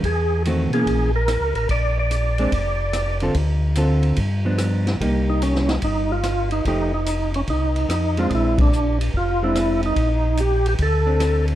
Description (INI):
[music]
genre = soul jazz organ trio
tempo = 145 BPM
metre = 4/4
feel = swing 66% on 8ths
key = Bb mixolydian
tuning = A4 = 441 Hz
[part]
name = hollow-body jazz guitar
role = accompaniment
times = 0.0-11.6 s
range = D3 to A4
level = -24 LUFS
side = right 1 dB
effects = none
[part]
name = mellow tonewheel organ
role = bass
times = 0.0-11.6 s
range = F1 to B2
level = -21 LUFS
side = equal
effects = slow rotary speaker
[part]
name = vintage drum kit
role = drums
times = 0.0-11.5 s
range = hi-hat, kick drum, ride cymbal, rim click, snare drum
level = -27 LUFS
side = equal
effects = none
[part]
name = overdriven tonewheel organ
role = melody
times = 0.1-11.5 s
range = Db4 to D5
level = -22 LUFS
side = right 1 dB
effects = slow rotary speaker, chorus vibrato
[sound]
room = light reverb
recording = dark, warm production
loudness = -18 LUFS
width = side -13 dB against mid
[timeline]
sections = 0.0-11.6 A section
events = band accent 8.5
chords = 0.0 E5; 1.7 Bbadd9; 3.3 Dm7; 4.2 G7; 5.0 Cm7; 6.7 F9; 8.3 Bb9